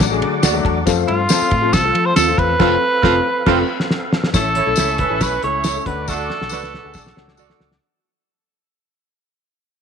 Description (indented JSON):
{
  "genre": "uptempo 1960s-style soul",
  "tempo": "138 BPM",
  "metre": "4/4",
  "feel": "straight",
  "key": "unclear",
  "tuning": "A4 = 440 Hz",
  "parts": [
    { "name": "warm upright piano", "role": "accompaniment", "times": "0.0-7.7 s", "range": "F3 to A5", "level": "-22 LUFS", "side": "left 13 dB", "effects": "none" },
    { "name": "tonewheel organ", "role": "sustained chords", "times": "0.0-7.8 s", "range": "A3 to D6", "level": "-27 LUFS", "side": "right 1 dB", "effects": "chorus vibrato, slow rotary speaker" },
    { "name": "fingered electric bass", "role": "bass", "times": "0.0-7.8 s", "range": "F1 to F3", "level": "-24 LUFS", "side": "equal", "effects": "none" },
    { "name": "cloth-damped thuddy drum kit", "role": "drums", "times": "0.0-7.8 s", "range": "crash cymbal, hi-hat, kick drum, ride cymbal, snare drum", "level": "-20 LUFS", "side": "equal", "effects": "none" },
    { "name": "congas", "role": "percussion", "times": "0.0-7.7 s", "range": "none", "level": "-35 LUFS", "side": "right 10 dB", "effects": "none" },
    { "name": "tambourine", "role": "percussion", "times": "0.0-7.5 s", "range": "none", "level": "-26 LUFS", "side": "left 16 dB", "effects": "none" },
    { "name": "mellow electric guitar", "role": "stabs", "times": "0.4-7.5 s", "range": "C4 to D5", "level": "-25 LUFS", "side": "right 15 dB", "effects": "phaser" },
    { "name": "breathy tenor saxophone", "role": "melody", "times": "1.1-7.6 s", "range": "F4 to C#5", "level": "-19 LUFS", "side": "right 1 dB", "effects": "tape echo" },
    { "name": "warm horn section", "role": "second line", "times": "2.6-7.7 s", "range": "A3 to D5", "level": "-24 LUFS", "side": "right 13 dB", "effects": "none" }
  ],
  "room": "light reverb, small room ambience",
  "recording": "1960s-style stereo with parts hard left and right",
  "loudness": "-14 LUFS",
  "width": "side -7 dB against mid",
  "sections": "0.0-4.3 A section; 4.3-7.8 B section",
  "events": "upright piano fill 0.0-0.9; band accent 2.6-4.3; drum fill 3.5-4.3, 6.1-7.8; fade-out 4.3-7.8",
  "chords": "0.0 D; 0.9 F; 4.3 A; 5.9 D",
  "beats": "0.00 0.44 | 0.87 1.30 1.74 2.17 | 2.60 3.04 3.47 3.91 | 4.34 4.77 5.21 5.64 | 6.08 6.51 6.95 7.38"
}